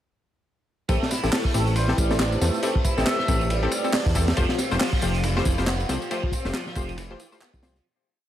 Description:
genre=breakbeat, breaks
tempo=138 BPM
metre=4/4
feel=swing 58% on 16ths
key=A minor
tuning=A4 = 444 Hz
part: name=dark analog pad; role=sustained chords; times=0.9-7.8 s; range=A3 to F5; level=-33 LUFS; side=right 2 dB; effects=chorus, sidechain pumping
part: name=biting overdriven guitar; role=riff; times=0.9-7.8 s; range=E3 to E4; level=-30 LUFS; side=right 1 dB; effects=tube saturation, phaser, ping-pong delay
part: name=filtered dub chord stab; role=stabs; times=0.9-7.8 s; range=A3 to C5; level=-30 LUFS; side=left 3 dB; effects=chorus, ping-pong delay
part: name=fat analog bass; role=bass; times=0.9-7.8 s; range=F1 to E2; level=-25 LUFS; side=equal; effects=none
part: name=crunchy breakbeat drum kit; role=drums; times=0.9-7.8 s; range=hi-hat, kick drum, ride cymbal, snare drum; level=-25 LUFS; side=equal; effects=none
part: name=electronic tambourine and handclaps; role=drums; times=0.9-7.8 s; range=none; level=-33 LUFS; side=equal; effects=none
part: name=trumpet with plunger mute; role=melody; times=1.8-3.6 s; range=C5 to E5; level=-32 LUFS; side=left 1 dB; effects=telephone sound, ping-pong delay
room=small room reverb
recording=none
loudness=-21 LUFS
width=side -12 dB against mid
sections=0.9-7.8 drop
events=drop 0.9-7.8; fade-out 5.5-7.8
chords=0.9 Am7; 4.4 Fadd9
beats=| 0.89 1.33 1.76 2.20 | 2.63 3.07 3.50 3.94 | 4.37 4.80 5.24 5.67 | 6.11 6.54 6.98 7.41

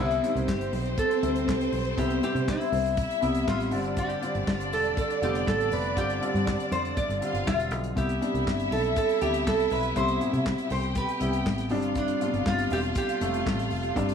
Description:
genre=disco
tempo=120 BPM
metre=4/4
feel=straight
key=C major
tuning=A4 = 440 Hz
part: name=metal-body resonator slide guitar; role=melody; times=0.0-14.1 s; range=D4 to D5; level=-30 LUFS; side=right 2 dB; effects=none
part: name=warm symphonic string section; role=second line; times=0.0-14.1 s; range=C4 to G5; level=-31 LUFS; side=left 1 dB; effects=none
part: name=warm concert grand piano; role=accompaniment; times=0.0-14.1 s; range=B2 to F4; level=-30 LUFS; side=left 1 dB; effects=none
part: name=fingered electric bass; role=bass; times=0.0-14.1 s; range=E1 to C3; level=-31 LUFS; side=equal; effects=none
part: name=damped 70s drum kit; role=drums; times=0.1-14.1 s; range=handclaps, hi-hat, kick drum, snare drum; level=-32 LUFS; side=left 1 dB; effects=none
room=light reverb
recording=none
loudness=-24 LUFS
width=side -7 dB against mid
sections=0.0-14.1 A section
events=none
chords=0.0 Cmaj7; 3.7 G7sus4; 8.0 Cmaj7; 11.7 G7sus4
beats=0.48 0.97 1.48 | 1.97 2.47 2.97 3.47 | 3.97 4.47 4.97 5.47 | 5.97 6.47 6.97 7.47 | 7.97 8.47 8.97 9.47 | 9.96 10.46 10.96 11.46 | 11.96 12.46 12.96 13.46 | 13.96

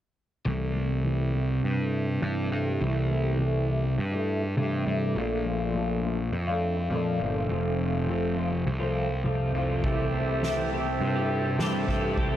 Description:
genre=psychedelic rock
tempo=102 BPM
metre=4/4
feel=straight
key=C mixolydian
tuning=A4 = 438 Hz
part: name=twelve-string electric guitar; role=riff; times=0.5-12.4 s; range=F2 to G4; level=-27 LUFS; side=equal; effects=flanger, low-pass filter
part: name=fuzz picked electric bass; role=bass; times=0.5-12.4 s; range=F1 to G2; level=-29 LUFS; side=equal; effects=overdrive
part: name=overdriven combo organ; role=sustained chords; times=9.8-12.4 s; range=C5 to A5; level=-32 LUFS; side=right 3 dB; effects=lush chorus, low-pass filter
part: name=soft-mallet drum kit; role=drums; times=9.8-12.3 s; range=kick drum, ride cymbal, snare drum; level=-31 LUFS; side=left 1 dB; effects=none
room=light reverb, studio reverb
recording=none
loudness=-25 LUFS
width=side -12 dB against mid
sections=0.5-12.4 A section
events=filter sweep 0.5-12.4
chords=0.5 C6; 5.2 Bbmaj7; 7.5 F; 9.8 C6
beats=| 0.46 1.05 1.64 2.23 | 2.81 3.40 3.99 4.57 | 5.16 5.75 6.33 6.92 | 7.51 8.09 8.68 9.26 | 9.85 10.43 11.01 11.60 | 12.18

